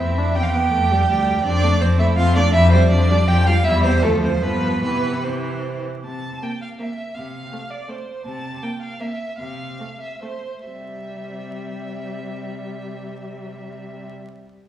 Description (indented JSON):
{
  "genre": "quick classical-period movement for string quartet",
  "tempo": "130-168 BPM",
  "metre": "3/4",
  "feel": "rubato",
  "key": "C major",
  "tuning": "A4 = 440 Hz",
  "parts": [
    { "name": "rich violin", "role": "melody", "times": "0.0-14.1 s", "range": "A3 to A5", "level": "-28 LUFS", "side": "left 1 dB", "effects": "none" },
    { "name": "rich violin", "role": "second line", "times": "0.0-14.1 s", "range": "C4 to G5", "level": "-22 LUFS", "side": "right 3 dB", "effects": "none" },
    { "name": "rich viola", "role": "accompaniment", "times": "0.0-14.1 s", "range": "E3 to D4", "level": "-27 LUFS", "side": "right 1 dB", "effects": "none" },
    { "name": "rich cello", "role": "bass", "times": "0.0-14.1 s", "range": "D2 to C3", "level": "-21 LUFS", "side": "left 1 dB", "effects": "none" }
  ],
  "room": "wet recital hall reverb, RT60 1.6 s",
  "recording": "heard from further back in the room, vinyl crackle, small room ambience",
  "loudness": "-16 LUFS",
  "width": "side -11 dB against mid",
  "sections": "0.0-6.0 A section; 6.0-10.7 B section; 10.7-13.4 C section",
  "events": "slowing down 7.7-10.7",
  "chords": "0.4 C/E; 1.5 F; 2.6 G5/F; 3.7 C/E; 4.0 Dm; 4.4 G7; 4.8 C; 6.0 C7; 7.2 F/C; 8.2 C7; 9.4 F/C; 10.7 C"
}